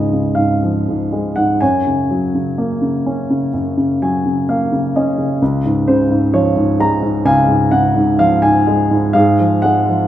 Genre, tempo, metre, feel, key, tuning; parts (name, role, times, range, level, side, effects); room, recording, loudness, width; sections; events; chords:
classical, lyrical solo piano; 63 BPM; 4/4; rubato; Db major; A4 = 436 Hz
warm grand piano; solo; 0.0-10.1 s; Db2 to Bb5; -13 LUFS; equal
moderate concert hall reverb, RT60 2.3 s; minimal, uncompressed stereo recording; -13 LUFS; side -12 dB against mid
0.0-10.1 A section
grand piano fill 3.5-5.4
0.0 Db; 1.6 Gbadd9; 5.4 Db; 9.1 Gbmaj7sus2/Ab